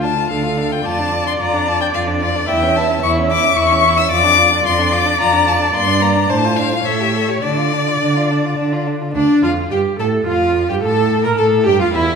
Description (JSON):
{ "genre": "quick classical-period movement for string quartet", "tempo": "110 BPM", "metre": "3/4", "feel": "rubato", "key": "D minor", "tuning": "A4 = 441 Hz", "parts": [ { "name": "rich violin", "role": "melody", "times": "0.0-12.2 s", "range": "C#5 to E6", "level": "-18 LUFS", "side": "left 7 dB", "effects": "none" }, { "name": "warm violin", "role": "second line", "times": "0.0-12.2 s", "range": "Bb3 to Bb4", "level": "-21 LUFS", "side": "left 2 dB", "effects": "none" }, { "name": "rich viola", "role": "accompaniment", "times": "0.0-12.2 s", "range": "D4 to E5", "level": "-18 LUFS", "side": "right 2 dB", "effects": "none" }, { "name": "warm cello", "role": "bass", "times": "0.0-12.2 s", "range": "D2 to D3", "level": "-20 LUFS", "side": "right 3 dB", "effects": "none" } ], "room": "wet recital hall reverb, RT60 1.4 s", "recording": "recorded in a church or concert hall", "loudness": "-13 LUFS", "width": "side -6 dB against mid", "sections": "0.0-9.2 A section; 9.2-12.2 B section", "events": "none", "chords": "0.0 Dm; 0.9 Dm/F; 2.5 E5; 4.1 Dm/F; 5.7 Gm; 6.3 Dm/A; 6.8 A7; 7.4 Dm; 10.8 A7(no3)", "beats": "0.31 | 0.86 1.40 1.95 | 2.49 3.03 3.58 | 4.11 4.66 5.20 | 5.74 6.29 6.84 | 7.43 8.00 8.57 | 9.15 9.71 10.28 | 10.84 11.39 11.94" }